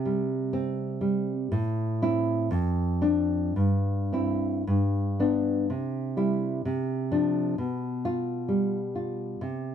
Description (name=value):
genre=romantic piece for solo classical guitar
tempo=54-67 BPM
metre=2/4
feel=rubato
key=C major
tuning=A4 = 445 Hz
part: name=nylon-string guitar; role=solo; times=0.0-9.7 s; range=F2 to F4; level=-25 LUFS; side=equal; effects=none
room=light reverb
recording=dry, close 1970s-style studio recording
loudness=-25 LUFS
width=side -8 dB against mid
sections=0.0-5.7 A section; 5.7-9.7 B section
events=none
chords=0.0 C5; 1.5 Am; 2.5 Dm7/F; 3.6 C/G; 4.7 G; 5.7 C; 6.6 Dm7/C; 7.6 G7/B